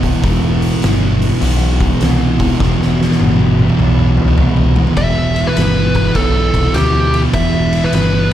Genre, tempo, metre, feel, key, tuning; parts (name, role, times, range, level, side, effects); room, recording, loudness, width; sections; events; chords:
stoner and doom metal; 102 BPM; 4/4; swing 66% on 8ths; E minor; A4 = 440 Hz
bowed-like drone; sustained chords; 0.0-4.9 s; E3 to F#4; -26 LUFS; left 2 dB
fuzz guitar; riff; 0.0-5.0 s; E2 to E3; -22 LUFS; equal
thick fuzz guitar; riff; 0.0-8.3 s; E2 to E3; -19 LUFS; left 6 dB; distortion
thick fuzz guitar; riff; 0.0-8.3 s; E2 to E3; -17 LUFS; right 6 dB; distortion
growling picked electric bass; bass; 0.0-8.3 s; E1 to D2; -16 LUFS; equal; overdrive
oversized low-tuned drum kit; drums; 0.0-8.1 s; hi-hat, kick drum, ride cymbal, snare drum, toms; -18 LUFS; equal
fuzz lead guitar; melody; 5.0-8.3 s; G4 to E5; -17 LUFS; equal; distortion, slapback echo
light reverb; live gig heard through the venue's PA, club reverb; -11 LUFS; side -11 dB against mid
0.0-5.0 A section; 5.0-8.3 B section
drum fill 2.6-5.0
0.0 Em